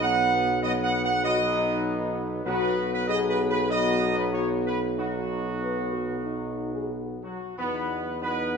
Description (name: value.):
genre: classical.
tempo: 87-99 BPM.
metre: 4/4.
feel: straight.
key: unclear.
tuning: A4 = 438 Hz.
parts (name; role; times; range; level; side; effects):
dark trumpet section; melody; 0.0-8.6 s; F#4 to F#5; -27 LUFS; right 2 dB; none.
clear trombone section; sustained chords; 0.0-8.6 s; F#3 to B3; -33 LUFS; equal; none.
dark French horn section; sustained chords; 0.0-8.6 s; F#3 to B4; -31 LUFS; left 6 dB; none.
warm tuba; bass; 0.0-8.6 s; B1 to E2; -29 LUFS; right 2 dB; none.
room: wet recital hall reverb, RT60 1.6 s.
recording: recorded in a church or concert hall.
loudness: -24 LUFS.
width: side -6 dB against mid.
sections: 0.0-7.6 A section.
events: none.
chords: 0.0 B; 7.6 B/E.